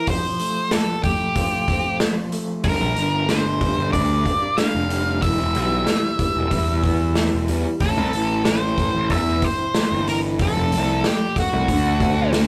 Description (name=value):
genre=quiet-loud alternative rock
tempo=93 BPM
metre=4/4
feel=straight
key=unclear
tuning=A4 = 440 Hz
part: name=octave-fuzz lead guitar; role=melody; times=0.0-12.3 s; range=F#4 to F5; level=-26 LUFS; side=equal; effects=distortion
part: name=electric guitar through a small old amp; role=arpeggios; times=0.0-12.5 s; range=G2 to F4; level=-28 LUFS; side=equal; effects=tremolo, digital delay
part: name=loose indie drum kit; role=drums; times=0.1-12.5 s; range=hi-hat, kick drum, snare drum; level=-26 LUFS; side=equal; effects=none
part: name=fuzz picked electric bass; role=bass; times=2.6-12.4 s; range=E1 to E2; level=-24 LUFS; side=equal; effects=overdrive
room=moderate studio reverb, RT60 0.6 s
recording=rough rehearsal-room recording, tube saturation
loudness=-21 LUFS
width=mono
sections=0.0-12.5 A section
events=none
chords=0.1 F; 2.7 Gm; 5.2 Em; 7.8 Am; 10.4 F; 11.7 D7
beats=| 0.08 0.72 1.36 2.01 | 2.65 3.29 3.94 4.58 | 5.23 5.87 6.52 7.16 | 7.81 8.46 9.10 9.75 | 10.39 11.04 11.68 12.33